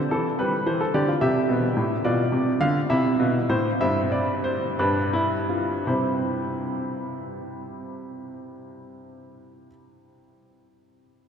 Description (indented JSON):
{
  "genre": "classical, baroque-style 3-part fugue for grand piano",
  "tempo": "52-73 BPM (dotted quarters)",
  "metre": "6/8",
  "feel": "straight",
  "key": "C major",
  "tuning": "A4 = 440 Hz",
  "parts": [
    { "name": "warm baby grand piano", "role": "solo", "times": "0.0-9.7 s", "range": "G2 to F5", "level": "-22 LUFS", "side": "equal", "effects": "none" }
  ],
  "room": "wet cathedral reverb, RT60 6.5 s",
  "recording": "none",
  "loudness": "-21 LUFS",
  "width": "side -7 dB against mid",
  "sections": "0.0-5.9 A section; 5.9-10.5 B section",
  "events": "slowing down 1.2-5.9",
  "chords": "0.4 G; 1.2 C; 2.0 Bdim; 2.9 C; 3.8 C/G; 4.8 G7; 5.9 C",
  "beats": "| 0.39 1.22 | 2.05 2.90 | 3.81 4.79 | 5.88 7.03 | 8.18 9.32"
}